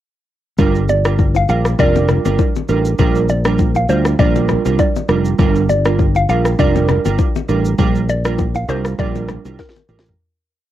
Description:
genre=afrobeats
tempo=100 BPM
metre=4/4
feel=swing 55% on 16ths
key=G minor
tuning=A4 = 440 Hz
part: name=glassy digital keys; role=accompaniment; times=0.6-10.1 s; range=G3 to Bb4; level=-19 LUFS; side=right 7 dB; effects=chorus, cassette tape
part: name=fingered electric bass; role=bass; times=0.6-10.1 s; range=F1 to D2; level=-17 LUFS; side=left 1 dB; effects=none
part: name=afro-pop drum kit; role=drums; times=0.6-10.2 s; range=kick drum, rim click, shaker, snare drum, toms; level=-18 LUFS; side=left 1 dB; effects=overdrive, cassette tape
part: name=congas and bongos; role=percussion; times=0.6-9.9 s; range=none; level=-24 LUFS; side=left 10 dB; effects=none
part: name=mallet-like synth pluck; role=melody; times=0.9-10.0 s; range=Bb4 to F5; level=-20 LUFS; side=equal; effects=chorus, phaser, cassette tape, analog delay
room=little or no reverb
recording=home recording on cassette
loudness=-13 LUFS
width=side -12 dB against mid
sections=0.6-10.2 verse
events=fade-out 7.8-10.2; drum fill 9.6-10.2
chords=0.6 Gm7; 3.0 Bb6; 5.4 Gm7; 7.8 Bb6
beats=| 0.59 1.19 1.79 2.39 | 2.99 3.59 4.19 4.79 | 5.39 5.99 6.59 7.19 | 7.79 8.39 8.99 9.59

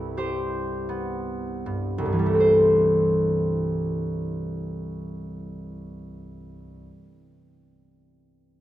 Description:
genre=classical, solo harp piece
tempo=25-30 BPM (dotted quarters)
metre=6/8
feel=rubato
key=C major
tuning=A4 = 440 Hz
part: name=concert harp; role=solo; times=0.0-7.3 s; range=C2 to C5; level=-23 LUFS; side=equal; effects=none
room=moderate recital hall reverb, RT60 1.8 s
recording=dark, warm production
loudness=-21 LUFS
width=side -13 dB against mid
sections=0.0-2.4 A section; 2.4-6.6 B section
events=slowing down 0.0-2.4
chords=0.0 Cmaj7; 2.4 C6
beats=0.16 | 2.39 4.48

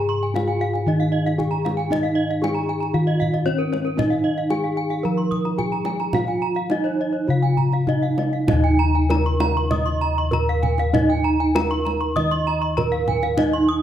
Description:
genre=Balinese gamelan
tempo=98-116 BPM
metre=4/4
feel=straight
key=Eb slendro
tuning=A4 = 440 Hz
part: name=gamelan-type bronze metallophone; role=melody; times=0.0-13.8 s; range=Db4-45c to Eb5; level=-24 LUFS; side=right 2 dB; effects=none
part: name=gamelan-type bronze metallophone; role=arpeggios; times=0.0-13.8 s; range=Bb4+25c to Eb6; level=-28 LUFS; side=right 6 dB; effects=none
part: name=gamelan-type bossed gongs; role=bass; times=0.0-13.8 s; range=Eb2 to Ab4-35c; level=-22 LUFS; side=left 1 dB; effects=none
part: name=gamelan-type bronze metallophone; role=arpeggios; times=0.2-13.5 s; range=Db5-45c to Eb6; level=-28 LUFS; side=left 6 dB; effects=none
part: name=kendang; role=percussion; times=0.4-13.5 s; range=none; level=-28 LUFS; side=right 2 dB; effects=none
room=moderate recital hall reverb, RT60 1.6 s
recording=close, detailed microphones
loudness=-18 LUFS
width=side -10 dB against mid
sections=0.0-8.5 A section; 8.5-13.8 B section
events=none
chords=none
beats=0.35 0.87 1.39 | 1.91 2.43 2.95 3.47 | 3.98 4.51 5.04 5.59 | 6.14 6.71 7.29 7.88 | 8.49 9.10 9.71 10.32 | 10.94 11.55 12.16 12.77 | 13.39

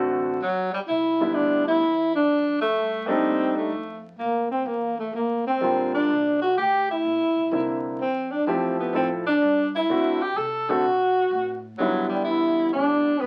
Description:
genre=jazz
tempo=126 BPM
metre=4/4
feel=swing 68% on 8ths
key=unclear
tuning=A4 = 440 Hz
part: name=warm concert grand piano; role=accompaniment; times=0.0-13.1 s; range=D3 to A4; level=-28 LUFS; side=equal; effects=none
part: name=upright bass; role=bass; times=0.0-13.3 s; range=E1 to D3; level=-46 LUFS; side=equal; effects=none
part: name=breathy trombone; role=melody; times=0.4-13.3 s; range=F#3 to A4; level=-25 LUFS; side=equal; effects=none
part: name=clear tenor saxophone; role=second line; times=0.4-13.3 s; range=F#3 to A4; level=-30 LUFS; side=equal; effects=none
room=wet studio reverb, RT60 0.5 s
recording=very old 78 rpm record, vinyl crackle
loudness=-23 LUFS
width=mono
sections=0.4-13.3 A section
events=none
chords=0.4 G6; 2.3 F13; 4.2 Bb6; 6.1 C9; 8.0 Fmaj9; 9.9 D7; 11.8 G6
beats=| 0.40 0.87 1.34 1.82 | 2.29 2.77 3.24 3.71 | 4.19 4.67 5.14 5.61 | 6.09 6.56 7.04 7.51 | 7.99 8.46 8.94 9.41 | 9.88 10.36 10.83 11.31 | 11.78 12.26 12.73 13.21

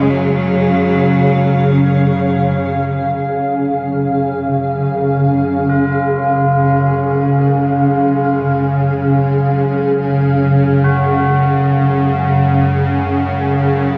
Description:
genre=dark ambient drone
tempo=free time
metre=none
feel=none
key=unclear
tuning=A4 = 439 Hz
part: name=clear cello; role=melody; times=0.0-2.4 s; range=F#3 to G#3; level=-21 LUFS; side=equal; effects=tape echo
part: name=granular cloud pad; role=sustained chords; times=0.0-14.0 s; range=C#3 to E#5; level=-18 LUFS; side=equal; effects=built-in reverb
part: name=tubular bells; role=arpeggios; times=0.0-14.0 s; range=E#4 to F#4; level=-22 LUFS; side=equal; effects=tape echo
part: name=bowed-like drone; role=drone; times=0.0-14.0 s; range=F#2 to C#3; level=-18 LUFS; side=equal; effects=built-in reverb
part: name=wind-like tuned noise texture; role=texture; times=0.0-14.0 s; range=G#3 to C#5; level=-30 LUFS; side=equal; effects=none
room=wet cathedral reverb, RT60 5.7 s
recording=worn, warbling old tape, cassette tape, warbly pitch drift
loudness=-14 LUFS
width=mono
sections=0.0-2.9 A section; 2.9-14.0 B section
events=none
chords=0.0 F#sus2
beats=free time

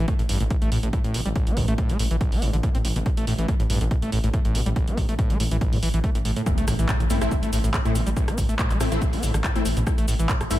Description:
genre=driving peak-time techno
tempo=141 BPM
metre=4/4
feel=straight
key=A minor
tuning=A4 = 440 Hz
part: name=screaming distorted acid line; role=riff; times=0.0-10.6 s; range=A1 to C4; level=-27 LUFS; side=equal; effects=distortion, chorus, sidechain pumping, diffuse ambient delay
part: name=detuned saw bass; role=bass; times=0.0-10.6 s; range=A1 to A2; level=-25 LUFS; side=equal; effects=tube saturation, sidechain pumping
part: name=electronic kick drum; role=drums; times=0.1-10.4 s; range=none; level=-24 LUFS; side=equal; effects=none
part: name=punchy analog drum machine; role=drums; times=0.1-10.6 s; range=handclaps, hi-hat, rim click, shaker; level=-31 LUFS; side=right 1 dB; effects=sidechain pumping on hats, sidechain pumping on perc
part: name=impact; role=sound effects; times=6.5-8.2 s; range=none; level=-31 LUFS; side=equal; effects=none
part: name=rave stab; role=stabs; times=7.1-10.6 s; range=A3 to E4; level=-29 LUFS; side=left 3 dB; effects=chorus, built-in reverb, vintage 12-bit sampler grit, sidechain pumping, diffuse ambient delay
room=light reverb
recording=none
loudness=-20 LUFS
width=side -14 dB against mid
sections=0.0-6.5 A section; 6.5-10.6 B section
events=drop 6.5-10.6; impact 6.5-8.2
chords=0.0 N.C.; 6.5 Am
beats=0.08 0.51 0.93 | 1.36 1.78 2.21 2.63 | 3.06 3.48 3.91 4.33 | 4.76 5.19 5.61 6.04 | 6.46 6.89 7.31 7.74 | 8.16 8.59 9.02 9.44 | 9.87 10.29

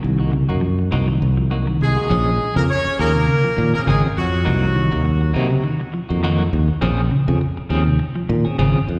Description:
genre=afrobeat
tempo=102 BPM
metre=4/4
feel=swing 55% on 16ths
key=Bb minor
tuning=A4 = 437 Hz
part: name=clean electric guitar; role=arpeggios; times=0.0-8.8 s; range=C3 to F3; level=-24 LUFS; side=equal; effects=slapback echo
part: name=semi-hollow electric guitar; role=stabs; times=0.0-8.9 s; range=F3 to Ab4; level=-29 LUFS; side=equal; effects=tremolo, slapback echo
part: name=fingered electric bass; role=bass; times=0.0-9.0 s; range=Ab1 to C3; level=-21 LUFS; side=equal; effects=none
part: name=brilliant horn section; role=melody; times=1.8-5.3 s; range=Gb4 to Db5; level=-25 LUFS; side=equal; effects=slapback echo, tape echo
part: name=brilliant trombone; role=second line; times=1.8-5.3 s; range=Gb3 to Db4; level=-32 LUFS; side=equal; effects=slapback echo, tape echo
room=light reverb, small room ambience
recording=live gig heard through the venue's PA, recital hall reverb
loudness=-19 LUFS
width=mono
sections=0.0-2.1 A section; 2.1-9.0 B section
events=none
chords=0.0 Cm7b5; 2.1 Bbm9; 4.5 Cm7b5; 6.8 Bbm9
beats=0.33 0.92 1.51 | 2.10 2.69 3.28 3.87 | 4.46 5.05 5.64 6.23 | 6.82 7.41 8.00 8.59

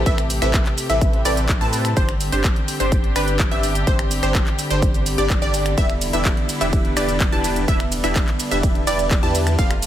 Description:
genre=EDM, festival progressive house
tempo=126 BPM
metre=4/4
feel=straight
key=unclear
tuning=A4 = 440 Hz
part: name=warm studio string section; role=sustained chords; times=0.0-9.9 s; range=C3 to G4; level=-27 LUFS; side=left 1 dB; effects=sidechain pumping
part: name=wide unison pluck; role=arpeggios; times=0.0-9.7 s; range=B4 to A5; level=-26 LUFS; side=right 1 dB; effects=sidechain pumping, dub echo
part: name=supersaw stab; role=riff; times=0.0-9.7 s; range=C4 to A5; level=-25 LUFS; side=right 1 dB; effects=phaser, sidechain pumping, dub echo
part: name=saturated sub bass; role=bass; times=0.0-9.9 s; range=E1 to A2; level=-24 LUFS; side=equal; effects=tube saturation, sidechain pumping
part: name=electronic kick drum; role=drums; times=0.1-9.7 s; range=none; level=-19 LUFS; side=equal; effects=studio reverb
part: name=house drum kit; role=drums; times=0.1-9.9 s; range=finger snaps, handclaps, hi-hat, ride cymbal, shaker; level=-26 LUFS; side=right 1 dB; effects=studio reverb
room=light reverb, digital ambience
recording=none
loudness=-17 LUFS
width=side -11 dB against mid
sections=0.0-9.9 A section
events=none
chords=0.0 Amadd9; 2.0 Gsus4; 5.8 Em7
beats=| 0.06 0.54 1.01 1.49 | 1.97 2.44 2.92 3.40 | 3.87 4.35 4.82 5.30 | 5.78 6.25 6.73 7.21 | 7.68 8.16 8.63 9.11 | 9.59

